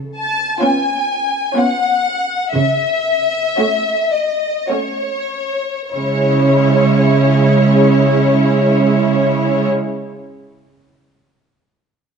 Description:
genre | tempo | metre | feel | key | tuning
classical, slow romantic movement for string orchestra | 47-67 BPM | 3/4 | rubato | C# minor | A4 = 436 Hz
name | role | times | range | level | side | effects
clear symphonic cello section | bass | 0.0-9.7 s | C#3 | -17 LUFS | right 3 dB | none
rich symphonic violin section | melody | 0.2-9.7 s | C#5 to A5 | -18 LUFS | left 4 dB | none
clear symphonic violin section | second line | 0.6-9.7 s | E4 to C#5 | -19 LUFS | left 1 dB | none
clear symphonic viola section | accompaniment | 0.6-9.7 s | G#3 to C#4 | -16 LUFS | right 4 dB | none
room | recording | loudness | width
moderate recital hall reverb, RT60 1.6 s | dark, warm production, nothing above 10.6 kHz | -13 LUFS | side -6 dB against mid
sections
0.0-5.9 A section; 5.9-9.6 B section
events
slowing down 0.0-5.9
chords
0.0 C#7; 2.5 F#m/C#; 5.9 C#m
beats
0.62 1.55 | 2.53 3.58 4.70 | 5.93 7.16 8.39

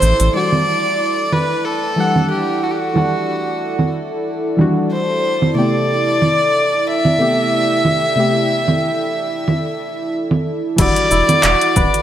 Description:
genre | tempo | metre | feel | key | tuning
organic downtempo | 92 BPM | 4/4 | swing 55% on 16ths | E minor | A4 = 440 Hz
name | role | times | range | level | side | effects
bright kamancheh | melody | 0.0-12.0 s | F#4 to E5 | -17 LUFS | equal | digital delay
warm analog pad | sustained chords | 0.0-12.0 s | E4 to G5 | -22 LUFS | right 1 dB | chorus, sidechain pumping
kora | arpeggios | 0.0-1.2, 10.8-12.0 s | B2 to C5 | -23 LUFS | right 1 dB | digital delay
round analog bass | bass | 0.0-0.3, 10.8-11.9 s | D1 to A1 | -16 LUFS | equal | sidechain pumping
deep house drum kit | drums | 0.0-12.0 s | cabasa, congas, crash cymbal, handclaps, hi-hat | -18 LUFS | right 2 dB | overdrive, low-pass filter on hats, low-pass filter on perc, low-pass filter on snare, low-pass filter on cymbals
deep mellow chord stab | accompaniment | 0.3-12.0 s | C3 to F#5 | -21 LUFS | left 2 dB | chorus, sidechain pumping, digital delay
electronic kick drum | drums | 10.8-11.9 s | none | -18 LUFS | equal | overdrive
room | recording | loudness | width
wet lush hall reverb, RT60 1.9 s | bright 1980s-style digital production | -14 LUFS | side -11 dB against mid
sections
0.3-10.8 A section; 10.8-12.0 B section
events
none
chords
0.3 Em9; 5.6 Am9; 10.8 Em9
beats
| 0.35 1.00 1.65 2.31 | 2.96 3.61 4.26 4.92 | 5.57 6.22 6.87 7.52 | 8.18 8.83 9.48 10.13 | 10.79 11.44

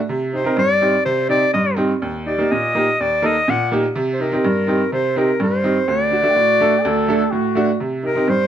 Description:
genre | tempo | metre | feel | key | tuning
klezmer | 124 BPM | 4/4 | straight | unclear | A4 = 441 Hz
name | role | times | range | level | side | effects
bright upright piano | accompaniment | 0.1-8.5 s | D2 to Bb4 | -18 LUFS | right 2 dB | none
clear clarinet | melody | 0.3-8.5 s | Bb4 to F#5 | -18 LUFS | left 1 dB | plate reverb
brilliant trombone | second line | 6.3-7.8 s | F#4 to A4 | -22 LUFS | left 6 dB | none
room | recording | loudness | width
light reverb | close, detailed microphones | -15 LUFS | side -10 dB against mid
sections
0.0-7.8 A section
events
none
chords
0.1 Cm; 2.0 Eb; 3.9 Cm; 5.9 D; 7.8 Cm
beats
| 0.09 0.58 1.06 1.54 | 2.02 2.50 2.98 3.46 | 3.95 4.43 4.91 5.39 | 5.87 6.36 6.84 7.32 | 7.80 8.28

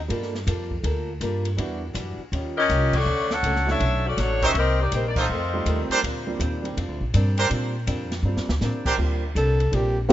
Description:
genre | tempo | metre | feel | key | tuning
jazz, big band swing | 162 BPM | 4/4 | swing 65% on 8ths | Bb major | A4 = 440 Hz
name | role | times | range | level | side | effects
upright bass | bass | 0.0-10.1 s | A1 to Bb2 | -25 LUFS | equal | none
picked old ladder-braced acoustic guitar | accompaniment | 0.1-10.0 s | F2 to A4 | -32 LUFS | left 1 dB | none
warm grand piano | accompaniment | 0.1-9.9 s | F#3 to A4 | -33 LUFS | right 4 dB | none
open jazz drum kit | drums | 0.1-10.1 s | crash cymbal, hi-hat, kick drum, ride cymbal, snare drum | -33 LUFS | equal | none
clear saxophone section | melody | 2.6-5.9 s | A3 to F#5 | -23 LUFS | left 2 dB | none
bright trumpet section | stabs | 4.4-8.9 s | D4 to C5 | -25 LUFS | right 3 dB | none
warm alto saxophone | melody | 9.4-10.0 s | G4 to A4 | -24 LUFS | equal | none
warm trombone section | sustained chords | 10.1 s | D3 to C4 | -10 LUFS | equal | none
room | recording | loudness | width
little or no reverb | rough home demo mix, nothing above 7.7 kHz | -21 LUFS | side -12 dB against mid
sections
0.0-9.0 A section; 9.0-10.1 B section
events
band accent 2.9, 5.1; drum fill 8.3-8.6; alto saxophone solo 9.0-10.1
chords
0.1 Gm9; 1.6 Em9; 2.3 Eb9; 3.1 Dmaj7; 4.5 Cm7; 5.3 F7; 6.0 Bb69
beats
| 0.11 0.48 0.85 1.22 | 1.59 1.96 2.33 2.70 | 3.07 3.44 3.81 4.18 | 4.55 4.92 5.29 5.66 | 6.03 6.40 6.77 7.14 | 7.51 7.88 8.25 8.62 | 8.99 9.36 9.73 10.10

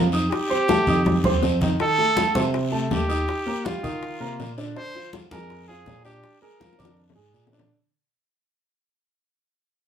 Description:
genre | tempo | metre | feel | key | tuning
Afro-Cuban jazz | 162 BPM | 4/4 | straight | Bb mixolydian | A4 = 440 Hz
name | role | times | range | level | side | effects
warm trumpet | melody | 0.0-7.1 s | F4 to C5 | -25 LUFS | right 2 dB | none
warm concert grand piano | accompaniment | 0.0-7.7 s | D3 to Eb6 | -27 LUFS | right 2 dB | none
barky tine electric piano | bass | 0.0-7.7 s | Eb2 to Eb3 | -26 LUFS | equal | none
bongos | percussion | 0.1-7.7 s | none | -30 LUFS | left 6 dB | none
congas | percussion | 0.1-7.5 s | none | -27 LUFS | equal | none
guiro | percussion | 0.1-7.7 s | none | -37 LUFS | left 4 dB | none
room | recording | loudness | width
wet small room reverb, RT60 0.5 s | band playing live in one room | -20 LUFS | side -8 dB against mid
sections
0.0-7.7 A section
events
fade-out 0.0-7.7; drum fill 1.1-1.8, 6.6-7.7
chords
0.3 F9; 3.3 Ebadd9; 4.8 Bb7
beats
| 0.32 0.69 1.06 1.43 | 1.80 2.17 2.54 2.91 | 3.28 3.65 4.02 4.39 | 4.76 5.13 5.50 5.87 | 6.24 6.61 6.98 7.35

